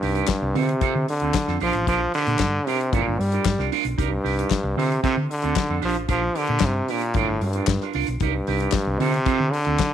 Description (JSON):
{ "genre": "disco", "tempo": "114 BPM", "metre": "4/4", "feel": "straight", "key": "C dorian", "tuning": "A4 = 441 Hz", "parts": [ { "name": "brilliant trombone", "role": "melody", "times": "0.0-9.9 s", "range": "G2 to G3", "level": "-24 LUFS", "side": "equal", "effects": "slapback echo" }, { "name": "electric guitar with an envelope filter", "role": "accompaniment", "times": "0.0-9.8 s", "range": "C4 to Bb4", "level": "-27 LUFS", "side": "right 15 dB", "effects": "harmonic tremolo" }, { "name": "hollow-body short-scale fingered electric bass", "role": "bass", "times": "0.0-9.8 s", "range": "G1 to D3", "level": "-26 LUFS", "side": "equal", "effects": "none" }, { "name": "damped 70s drum kit", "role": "drums", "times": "0.0-9.9 s", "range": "handclaps, hi-hat, kick drum, snare drum", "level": "-26 LUFS", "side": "left 4 dB", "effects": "none" } ], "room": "light reverb, studio reverb", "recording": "1960s-style stereo", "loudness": "-20 LUFS", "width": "side -10 dB against mid", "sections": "0.0-9.9 A section", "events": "none", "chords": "0.0 Cm7; 0.5 Dm7; 1.6 Bb6; 2.9 Gm7; 4.0 Cm7; 4.8 Dm7; 5.8 Bb6; 7.1 Gm7; 8.2 Cm7; 9.0 Dm7" }